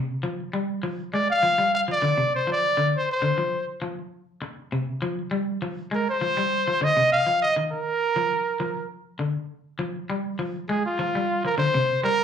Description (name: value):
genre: afrobeat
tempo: 100 BPM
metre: 4/4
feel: swing 54% on 16ths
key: F dorian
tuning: A4 = 440 Hz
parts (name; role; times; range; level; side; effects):
- electric guitar at the edge of break-up; arpeggios; 0.0-12.2 s; C3 to Ab3; -27 LUFS; left 2 dB; slapback echo
- bright trumpet; melody; 1.1-12.2 s; F4 to F5; -22 LUFS; equal; slapback echo
room: moderate club reverb, RT60 0.8 s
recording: live gig heard through the venue's PA, club reverb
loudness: -22 LUFS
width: side -8 dB against mid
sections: 0.0-12.2 A section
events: none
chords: 0.2 Fsus2; 5.0 Bb5; 9.8 Fmadd9